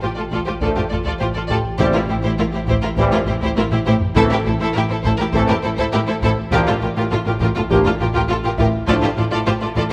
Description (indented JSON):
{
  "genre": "cinematic, suspense film score",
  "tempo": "102 BPM",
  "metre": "4/4",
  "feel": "straight",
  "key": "unclear",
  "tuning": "A4 = 442 Hz",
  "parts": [
    { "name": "warm symphonic violin section", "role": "melody", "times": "0.0-9.9 s", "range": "A4 to D5", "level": "-30 LUFS", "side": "equal", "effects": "none" },
    { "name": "clear symphonic violin section", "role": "second line", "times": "0.0-9.9 s", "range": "F4 to A4", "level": "-28 LUFS", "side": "equal", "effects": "none" },
    { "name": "clear symphonic viola section", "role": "accompaniment", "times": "0.0-9.9 s", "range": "E4 to F4", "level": "-27 LUFS", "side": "equal", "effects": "none" },
    { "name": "rich symphonic cello section", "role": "bass", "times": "0.0-9.8 s", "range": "A2", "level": "-26 LUFS", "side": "equal", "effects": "none" },
    { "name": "rich symphonic double bass section", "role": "bass", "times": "0.0-9.8 s", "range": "A1", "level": "-26 LUFS", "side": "equal", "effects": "none" },
    { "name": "metallic inharmonic drone", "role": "drone", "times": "0.0-9.9 s", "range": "A1", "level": "-30 LUFS", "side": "equal", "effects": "chorus, built-in reverb" },
    { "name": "dark concert grand piano", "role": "texture", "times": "0.0-4.2, 8.6-9.9 s", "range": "E4 to G5", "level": "-35 LUFS", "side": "equal", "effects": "none" },
    { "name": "taiko ensemble", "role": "drums", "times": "0.3-9.9 s", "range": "none", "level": "-29 LUFS", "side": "equal", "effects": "none" },
    { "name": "clear trombone section", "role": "sustained chords", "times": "0.6-9.1 s", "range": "E3 to Bb3", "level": "-28 LUFS", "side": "equal", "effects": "none" },
    { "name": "dark French horn section", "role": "sustained chords", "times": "0.6-9.1 s", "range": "F3 to C5", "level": "-26 LUFS", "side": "equal", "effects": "none" },
    { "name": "timpani", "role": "percussion", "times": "1.8-7.4 s", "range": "A2", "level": "-28 LUFS", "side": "equal", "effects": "none" }
  ],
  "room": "moderate scoring stage reverb, RT60 2.2 s",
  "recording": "none",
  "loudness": "-18 LUFS",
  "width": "mono",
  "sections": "0.0-9.9 A section",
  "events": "drum fill 3.6-4.2",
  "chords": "0.0 Dm/A; 1.8 C/A; 4.2 Am; 6.5 Gm7/A; 8.9 Dm/A"
}